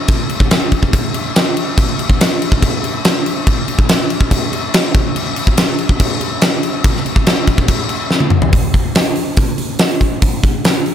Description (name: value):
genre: rock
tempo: 142 BPM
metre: 4/4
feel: straight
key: none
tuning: none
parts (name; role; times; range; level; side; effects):
- huge arena drum kit; drums; 0.1-10.9 s; crash cymbal, hi-hat, kick drum, snare drum, toms; -12 LUFS; equal; none
room: little or no reverb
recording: none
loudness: -12 LUFS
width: side -9 dB against mid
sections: 0.0-8.5 A section; 8.5-10.9 B section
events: drum fill 8.1-8.5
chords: none